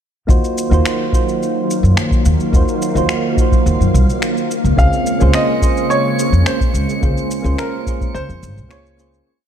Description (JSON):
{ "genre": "sunset chillout", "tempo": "107 BPM", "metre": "4/4", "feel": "straight", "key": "Eb dorian", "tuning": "A4 = 438 Hz", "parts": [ { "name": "soft electric-piano-like synth keys", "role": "accompaniment", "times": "0.3-9.3 s", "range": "Bb3 to C5", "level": "-20 LUFS", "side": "moving between left 1 dB and right 6 dB", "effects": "chorus, auto-pan, digital delay" }, { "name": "soft string machine", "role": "sustained chords", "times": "0.5-9.2 s", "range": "Db3 to F5", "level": "-21 LUFS", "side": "equal", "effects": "phaser, ensemble chorus" }, { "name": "upright bass", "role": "bass", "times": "0.3-9.2 s", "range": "Ab1 to Gb2", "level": "-15 LUFS", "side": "equal", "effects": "none" }, { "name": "electronic kick drum", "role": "drums", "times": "0.3-8.1 s", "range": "none", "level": "-15 LUFS", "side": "equal", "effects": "none" }, { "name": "electronic shaker and finger snaps", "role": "drums", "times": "0.3-9.2 s", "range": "none", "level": "-25 LUFS", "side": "left 1 dB", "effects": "none" }, { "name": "clear baby grand piano", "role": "melody", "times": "4.8-9.1 s", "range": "Bb4 to F5", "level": "-21 LUFS", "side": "equal", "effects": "digital delay" }, { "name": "drifting glass-harmonics texture", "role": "texture", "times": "5.0-9.3 s", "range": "Db7", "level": "-31 LUFS", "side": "right 3 dB", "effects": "chorus, built-in reverb" } ], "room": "light reverb, digital ambience", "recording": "dark, warm production", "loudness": "-13 LUFS", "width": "side -9 dB against mid", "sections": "0.3-9.3 groove", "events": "fade-out 6.3-9.3", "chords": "0.3 Ebm69; 4.5 Bbm9/Db" }